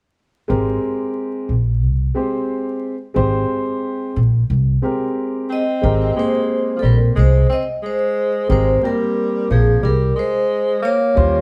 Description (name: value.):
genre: hip hop.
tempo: 90 BPM.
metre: 4/4.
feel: swing 60% on 16ths.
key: Ab major.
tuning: A4 = 440 Hz.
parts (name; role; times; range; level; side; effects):
dark baby grand piano; accompaniment; 0.5-11.4 s; G3 to G5; -24 LUFS; equal; none.
upright bass; bass; 0.5-11.4 s; Ab1 to Eb2; -18 LUFS; equal; none.
vibraphone with medium hard mallets; melody; 5.5-11.4 s; Ab4 to Eb5; -21 LUFS; equal; none.
mellow tenor saxophone; second line; 5.5-11.4 s; F3 to C4; -26 LUFS; equal; none.
room: moderate large studio reverb, RT60 0.9 s.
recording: band playing live in one room, vinyl crackle.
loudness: -18 LUFS.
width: mono.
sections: 0.5-5.8 A section; 5.8-11.4 B section.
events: none.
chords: 0.5 Abmaj9.